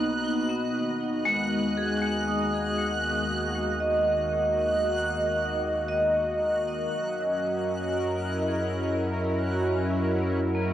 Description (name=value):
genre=ambient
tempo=58 BPM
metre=3/4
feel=straight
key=unclear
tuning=A4 = 439 Hz
part: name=warm analog pad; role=sustained chords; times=0.0-10.7 s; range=B2 to D#5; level=-30 LUFS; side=equal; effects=chorus, cassette tape, shimmer reverb
part: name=vibraphone with hard mallets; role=arpeggios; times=0.0-10.7 s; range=G#3 to D#6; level=-27 LUFS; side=equal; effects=cassette tape, tape echo, shimmer reverb
part: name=warm sub bass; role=bass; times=0.0-10.7 s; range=B1 to F#2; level=-35 LUFS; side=equal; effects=none
part: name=backwards swelling texture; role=texture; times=0.0-10.7 s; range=F#6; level=-35 LUFS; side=right 2 dB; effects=built-in reverb, cassette tape, shimmer reverb
room=wet booth ambience, RT60 0.3 s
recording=home recording on cassette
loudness=-24 LUFS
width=side -11 dB against mid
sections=0.0-10.7 A section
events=fade-in on analog synth pad 0.0-10.7; fade-in on sub bass 0.0-10.7; fade-out on vibraphone 0.0-10.7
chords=0.0 B; 0.8 D#m; 6.9 F#7